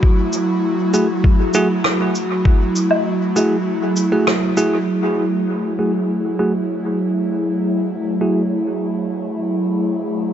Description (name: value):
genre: ambient dub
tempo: 99 BPM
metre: 4/4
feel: straight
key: F# minor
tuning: A4 = 439 Hz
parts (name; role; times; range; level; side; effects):
- airy breathy pad; sustained chords; 0.0-10.3 s; F#3 to G#4; -18 LUFS; equal; chorus
- electronic kick drum; drums; 0.0-2.6 s; none; -13 LUFS; left 1 dB; none
- cabasa, rim click and woodblock; drums; 0.3-4.7 s; none; -22 LUFS; equal; dub echo
- bell-like tine electric piano; stabs; 0.9-8.4 s; A3 to G#4; -21 LUFS; right 1 dB; low-pass filter, dub echo
room: moderate huge ambient reverb, RT60 4.0 s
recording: nothing above 7.7 kHz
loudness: -16 LUFS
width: side -10 dB against mid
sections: 0.0-4.9 A section; 4.9-10.3 B section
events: kick drops out 3.7-4.9; filter sweep on tine electric piano 4.9-10.3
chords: 0.0 F#m9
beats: | 0.03 0.64 1.24 1.85 | 2.46 3.06 3.67 4.27 | 4.88 5.49 6.09 6.70 | 7.30 7.91 8.52 9.12 | 9.73